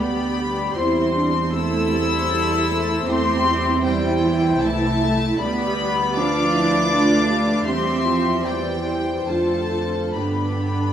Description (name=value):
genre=classical, slow romantic movement for string orchestra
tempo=66-81 BPM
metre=3/4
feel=rubato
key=C major from 3.1 s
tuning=A4 = 439 Hz
part: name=warm symphonic violin section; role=melody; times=0.0-10.9 s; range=G5 to E6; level=-24 LUFS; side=left 4 dB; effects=none
part: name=warm symphonic violin section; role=second line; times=0.0-10.9 s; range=G4 to F5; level=-27 LUFS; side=left 4 dB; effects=none
part: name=dark symphonic viola section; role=accompaniment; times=0.0-10.9 s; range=D3 to G4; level=-23 LUFS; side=right 2 dB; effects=none
part: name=dark studio double bass section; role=bass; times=0.0-10.9 s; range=C2 to G2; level=-26 LUFS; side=right 3 dB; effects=none
part: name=warm symphonic cello section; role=bass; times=0.0-10.9 s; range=G3 to E4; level=-24 LUFS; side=right 2 dB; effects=none
room=wet concert hall reverb, RT60 2.4 s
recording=small room ambience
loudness=-18 LUFS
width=side -9 dB against mid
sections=0.0-10.9 A section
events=none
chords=0.0 N.C.; 0.8 C/E; 5.4 G7/D; 7.7 C/E; 9.3 Dm/F; 10.1 G